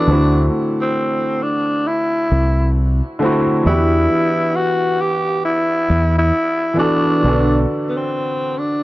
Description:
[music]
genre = hip hop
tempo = 67 BPM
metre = 4/4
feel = swing 64% on 16ths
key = E minor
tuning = A4 = 440 Hz
[part]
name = growling tenor saxophone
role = melody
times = 0.0-8.8 s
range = B3 to G4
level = -18 LUFS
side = equal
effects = low-pass filter
[part]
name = felt-muted upright piano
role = accompaniment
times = 0.0-8.8 s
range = D3 to B4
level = -19 LUFS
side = equal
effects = cassette tape, low-pass filter
[part]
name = fingered electric bass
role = bass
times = 0.1-7.6 s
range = B1 to E2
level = -15 LUFS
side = equal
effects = tube saturation
[sound]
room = moderate studio reverb, RT60 0.5 s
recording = worn, warbling old tape, cassette tape, warbly pitch drift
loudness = -15 LUFS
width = side -17 dB against mid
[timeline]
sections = 0.0-8.8 A section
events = none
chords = 0.1 D9; 3.6 Em7; 7.2 Bm7

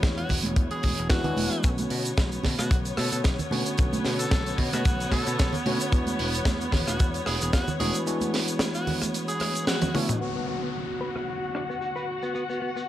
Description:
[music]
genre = nu-disco, nu disco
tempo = 112 BPM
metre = 4/4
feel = swing 54% on 16ths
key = B dorian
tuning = A4 = 440 Hz
[part]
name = barky tine electric piano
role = accompaniment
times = 0.0-12.9 s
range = D3 to C#5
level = -33 LUFS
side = equal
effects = sidechain pumping, tape echo
[part]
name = rich chamber string section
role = sustained chords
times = 0.0-12.9 s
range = B3 to F#5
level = -33 LUFS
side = left 1 dB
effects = sidechain pumping, low-pass filter
[part]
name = picked electric bass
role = bass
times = 0.0-7.9 s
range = E1 to B2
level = -31 LUFS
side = equal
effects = none
[part]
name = kick drum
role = drums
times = 0.0-7.6 s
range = none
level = -24 LUFS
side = equal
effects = none
[part]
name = tight funk drum kit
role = drums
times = 0.0-12.9 s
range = hi-hat, rim click, shaker, snare drum, toms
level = -30 LUFS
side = right 1 dB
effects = low-pass filter on cymbals, low-pass filter on hats, low-pass filter on toms, low-pass filter on snare, low-pass filter on perc, low-pass filter on room
[part]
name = congas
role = percussion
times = 0.0-10.1 s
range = none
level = -34 LUFS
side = right 4 dB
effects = none
[part]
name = raspy tenor saxophone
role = melody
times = 0.2-10.2 s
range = F#4 to A4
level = -34 LUFS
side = equal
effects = tape echo
[part]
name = direct-recorded clean electric guitar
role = riff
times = 10.2-12.8 s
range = B3 to B4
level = -34 LUFS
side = left 2 dB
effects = lush chorus, low-pass filter, tape echo
[part]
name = downlifter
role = sound effects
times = 10.2-12.9 s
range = none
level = -37 LUFS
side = left 1 dB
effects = none
[sound]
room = light reverb, studio reverb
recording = dry, gritty hardware recording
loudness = -24 LUFS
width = side -13 dB against mid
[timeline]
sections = 0.0-10.2 A section; 10.2-12.9 B section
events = drum fill 9.7-10.2; band accent 9.7; filter sweep on drum 10.2-12.9; filter sweep on clean electric guitar 10.2-12.9; filter sweep on string section 10.2-12.9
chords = 0.0 E7; 1.6 Bm7; 5.9 E7; 10.2 Bm7

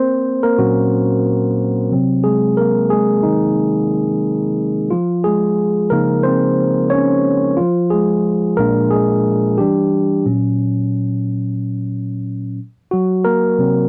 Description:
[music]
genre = R&B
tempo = 90 BPM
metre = 4/4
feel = swing 54% on 16ths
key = unclear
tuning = A4 = 440 Hz
[part]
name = mellow tine electric piano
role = solo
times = 0.0-13.9 s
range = Bb2 to Db5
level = -16 LUFS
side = equal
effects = none
[sound]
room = moderate booth ambience, RT60 0.2 s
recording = dry, close 1970s-style studio recording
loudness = -17 LUFS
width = mono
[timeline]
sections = 0.0-4.9 A section; 4.9-13.9 B section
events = tine electric piano solo 0.0-4.9, 4.9-13.9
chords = 0.0 Gb/Bb; 1.9 Ab9/C; 4.9 Dbmaj9; 7.6 Bb7; 9.6 Em7; 10.2 Bbm; 12.6 Ab9 (rootless)

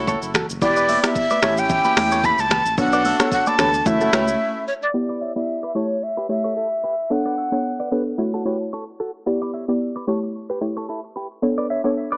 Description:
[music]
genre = afrobeats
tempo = 111 BPM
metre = 4/4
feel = swing 55% on 16ths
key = E dorian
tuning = A4 = 440 Hz
[part]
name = warm horn section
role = second line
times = 0.0-4.7 s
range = A3 to B4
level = -26 LUFS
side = equal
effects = none
[part]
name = round analog bass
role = bass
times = 0.0-4.4 s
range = E1 to E2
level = -31 LUFS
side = equal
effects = none
[part]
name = direct-recorded clean electric guitar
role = riff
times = 0.1-12.2 s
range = E4 to E5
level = -26 LUFS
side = right 1 dB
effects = phaser, tape echo
[part]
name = afro-pop drum kit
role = drums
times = 0.1-4.4 s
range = finger snaps, hi-hat, kick drum, rim click, shaker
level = -23 LUFS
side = equal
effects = none
[part]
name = congas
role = percussion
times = 0.1-4.3 s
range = none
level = -31 LUFS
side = equal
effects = none
[part]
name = breathy jazz flute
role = melody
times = 0.6-7.9 s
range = C#5 to B5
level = -20 LUFS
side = equal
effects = none
[part]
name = soft round pluck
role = accompaniment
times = 0.6-12.0 s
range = A3 to D5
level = -22 LUFS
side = equal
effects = chorus
[sound]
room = light reverb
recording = low-pass filter, small speaker sound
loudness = -18 LUFS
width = side -28 dB against mid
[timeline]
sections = 0.0-4.9 A section; 4.9-12.2 B section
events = break 4.4-4.9; filter sweep 4.9-12.2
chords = 0.0 F#m7; 0.6 Em7; 1.4 A7; 2.8 Bm9; 3.9 F#m7; 4.9 Em7; 5.8 A7; 7.1 Bm9; 8.2 F#m7; 9.3 Em7; 10.1 A7; 11.4 Bm9

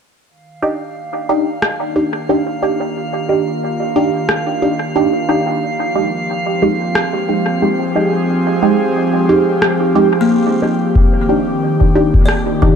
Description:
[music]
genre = ambient dub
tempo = 90 BPM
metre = 4/4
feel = swing 56% on 16ths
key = unclear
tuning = A4 = 440 Hz
[part]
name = airy breathy pad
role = sustained chords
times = 0.3-12.8 s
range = Eb3 to Ab4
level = -18 LUFS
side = left 1 dB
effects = chorus
[part]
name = drifting glass-harmonics texture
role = texture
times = 0.7-11.0 s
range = F5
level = -25 LUFS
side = right 3 dB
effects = chorus, built-in reverb
[part]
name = filtered dub chord stab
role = stabs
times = 0.6-12.8 s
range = Ab3 to G4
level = -16 LUFS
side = right 2 dB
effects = phaser, dub echo
[part]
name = electronic rim click and congas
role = drums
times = 1.6-12.8 s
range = none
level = -21 LUFS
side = equal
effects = dub echo
[part]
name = buzzing kalimba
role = arpeggios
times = 10.2-12.8 s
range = Bb3 to D5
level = -19 LUFS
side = left 3 dB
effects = dub echo
[part]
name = electronic kick drum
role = drums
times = 11.0-12.8 s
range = none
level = -13 LUFS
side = left 1 dB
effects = none
[sound]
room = moderate echo chamber reverb, RT60 2.1 s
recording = echo-heavy mix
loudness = -13 LUFS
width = side -7 dB against mid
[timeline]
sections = 0.3-11.0 A section; 11.0-12.8 B section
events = fade-in on analog synth pad 0.3-11.0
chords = 0.3 Ebmaj7; 5.6 Fm9; 11.0 Ebmaj7

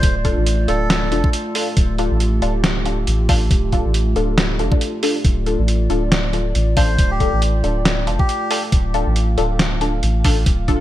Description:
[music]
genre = deep dubstep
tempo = 138 BPM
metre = 4/4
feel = swing 56% on 16ths, half-time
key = D minor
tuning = A4 = 439 Hz
[part]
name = melodica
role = melody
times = 0.0-1.3, 6.8-8.6 s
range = G4 to C5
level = -27 LUFS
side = equal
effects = dub echo
[part]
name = dark analog pad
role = sustained chords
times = 0.0-10.8 s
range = A3 to F5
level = -26 LUFS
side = right 1 dB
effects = chorus
[part]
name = soft dub sub bass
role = bass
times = 0.0-10.8 s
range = D1 to A1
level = -19 LUFS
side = equal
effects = none
[part]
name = electronic kick drum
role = drums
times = 0.0-10.8 s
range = none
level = -16 LUFS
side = equal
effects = small room ambience
[part]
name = trip hop sampler-style drum kit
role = drums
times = 0.0-10.8 s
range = hi-hat, snare drum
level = -21 LUFS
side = equal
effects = small room ambience, gated reverb
[part]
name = filtered dub chord stab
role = stabs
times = 0.2-10.8 s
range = D4 to A4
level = -24 LUFS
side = left 2 dB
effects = phaser, analog chorus, cassette tape, dub echo
[sound]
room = light reverb, digital ambience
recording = bright 1980s-style digital production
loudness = -15 LUFS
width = side -14 dB against mid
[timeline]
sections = 0.0-10.8 A section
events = none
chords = 0.0 Dm

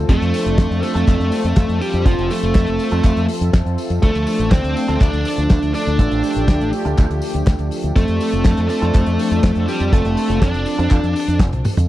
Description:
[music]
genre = italo disco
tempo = 122 BPM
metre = 4/4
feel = straight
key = unclear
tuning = A4 = 440 Hz
[part]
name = lush unison pad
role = sustained chords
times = 0.0-11.9 s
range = F3 to E5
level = -24 LUFS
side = equal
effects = chorus
[part]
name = fingered electric bass with an envelope filter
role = bass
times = 0.0-11.9 s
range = F1 to F2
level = -20 LUFS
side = equal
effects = tube saturation
[part]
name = high-gain lead guitar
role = melody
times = 0.1-11.4 s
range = F3 to D5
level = -21 LUFS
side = left 1 dB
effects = distortion, tape echo
[part]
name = electric guitar with an envelope filter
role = stabs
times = 0.1-11.1 s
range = A3 to A4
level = -26 LUFS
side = right 4 dB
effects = none
[part]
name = damped 70s drum kit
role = drums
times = 0.1-11.9 s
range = handclaps, hi-hat, snare drum, tambourine, toms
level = -24 LUFS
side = equal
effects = studio reverb
[part]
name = kick drum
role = drums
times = 0.1-11.5 s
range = none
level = -14 LUFS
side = equal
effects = studio reverb
[sound]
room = little or no reverb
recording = dry, close 1970s-style studio recording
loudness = -15 LUFS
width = side -15 dB against mid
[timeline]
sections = 0.0-11.9 A section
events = drum fill 11.5-11.9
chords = 0.1 F6; 4.0 Dm; 8.0 F6

